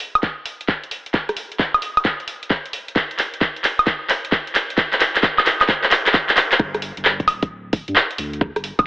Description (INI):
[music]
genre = UK garage, two-step garage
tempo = 132 BPM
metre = 4/4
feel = swing 66% on 16ths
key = unclear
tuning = A4 = 439 Hz
[part]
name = punchy analog drum machine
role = drums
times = 0.0-8.9 s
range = handclaps, hi-hat, rim click, woodblock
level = -17 LUFS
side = equal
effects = none
[part]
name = electronic kick drum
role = drums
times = 0.2-8.9 s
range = none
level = -20 LUFS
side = equal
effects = none
[part]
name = saturated sub bass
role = bass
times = 6.6-8.9 s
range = D1 to G2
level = -31 LUFS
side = equal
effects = tube saturation
[sound]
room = moderate plate reverb, RT60 2.1 s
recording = AM radio sound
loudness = -17 LUFS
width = side -22 dB against mid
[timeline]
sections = 0.0-6.6 A section; 6.6-8.9 B section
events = build-up 0.0-6.6; drum fill 0.0-6.6; drop 6.6-8.9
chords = none